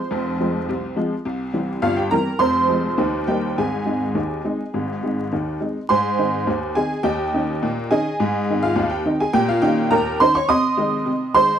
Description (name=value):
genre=ragtime piano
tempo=104 BPM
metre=2/4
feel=straight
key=Ab major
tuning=A4 = 436 Hz
part: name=honky-tonk upright piano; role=solo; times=0.0-11.6 s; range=F1 to Eb6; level=-18 LUFS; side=right 1 dB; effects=none
room=moderate studio reverb, RT60 0.5 s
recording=vinyl crackle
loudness=-18 LUFS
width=side -9 dB against mid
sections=0.0-5.9 A section; 5.9-11.6 B section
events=none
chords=0.0 Fm; 1.3 C7; 2.4 Fm; 3.0 Eb; 3.6 Ab; 7.0 Eb7; 8.2 Ab; 9.3 Eb7/Bb; 10.5 Ab/C